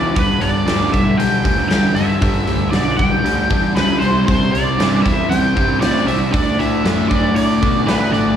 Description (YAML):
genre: blues rock power trio and southern rock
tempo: 116 BPM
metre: 4/4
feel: straight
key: unclear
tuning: A4 = 441 Hz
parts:
  - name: octave-fuzz lead guitar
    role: melody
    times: 0.0-8.4 s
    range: B4 to G5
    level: -20 LUFS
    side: equal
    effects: wah, distortion, slapback echo, plate reverb
  - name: crunchy overdriven guitar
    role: riff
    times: 0.0-8.4 s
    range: E2 to D4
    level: -18 LUFS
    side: equal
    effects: slapback echo
  - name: fuzz picked electric bass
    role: bass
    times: 0.0-8.4 s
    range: G1 to B2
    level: -21 LUFS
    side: equal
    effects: overdrive
  - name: huge arena drum kit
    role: drums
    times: 0.2-8.3 s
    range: hi-hat, kick drum, snare drum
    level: -20 LUFS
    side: equal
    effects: none
room: moderate club reverb, RT60 0.5 s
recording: live gig heard through the venue's PA, recital hall reverb, small room ambience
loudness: -14 LUFS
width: side -9 dB against mid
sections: 0.0-8.4 A section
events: none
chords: 0.2 G; 4.0 C; 6.3 D